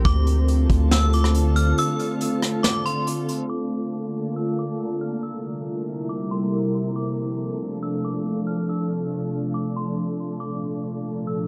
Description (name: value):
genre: hip hop, atmospheric cloud-rap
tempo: 139 BPM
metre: 4/4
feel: half-time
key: unclear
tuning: A4 = 436 Hz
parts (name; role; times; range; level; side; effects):
- glassy FM pad; sustained chords; 0.0-11.5 s; Bb2 to Bb4; -27 LUFS; equal; ensemble chorus, built-in reverb
- long sustained 808-style bass; bass; 0.0-1.7 s; D2; -21 LUFS; equal; none
- metallic FM bell; melody; 0.1-11.5 s; C6 to F6; -33 LUFS; equal; chorus, tremolo, low-pass filter, tape echo
- vintage brush drum kit; drums; 0.1-3.4 s; hi-hat, kick drum, rim click, snare drum; -26 LUFS; equal; none
room: moderate huge ambient reverb, RT60 4.7 s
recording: low-pass filter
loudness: -24 LUFS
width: mono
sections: 0.0-3.5 A section; 3.5-11.5 B section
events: break 1.8-3.5; filter sweep 3.5-11.5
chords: 0.1 Dm7; 3.5 Bbmaj7; 5.2 C7; 7.0 Dm7; 10.4 Bbmaj7